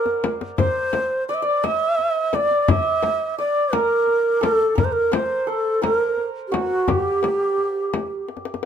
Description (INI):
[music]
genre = Persian modal ensemble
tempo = 57 BPM (dotted quarters)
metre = 6/8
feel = straight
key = unclear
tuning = A4 = 440 Hz
[part]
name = breathy reedy low ney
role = melody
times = 0.0-8.3 s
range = F#4 to E5-42c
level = -20 LUFS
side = right 1 dB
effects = plate reverb
[part]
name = santur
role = second line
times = 0.0-8.7 s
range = F#4 to E5-50c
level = -27 LUFS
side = right 1 dB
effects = none
[part]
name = tombak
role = percussion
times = 0.1-8.7 s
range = none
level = -26 LUFS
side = left 6 dB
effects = none
[part]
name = frame drum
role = percussion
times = 0.2-8.1 s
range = none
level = -25 LUFS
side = left 6 dB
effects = none
[sound]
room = moderate studio ambience, RT60 0.5 s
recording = none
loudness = -18 LUFS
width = side -8 dB against mid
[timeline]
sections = 0.0-8.7 A section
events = drum fill 0.0-0.6, 8.3-8.7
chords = none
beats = | 0.58 1.63 | 2.68 3.73 | 4.78 5.83 | 6.89 7.94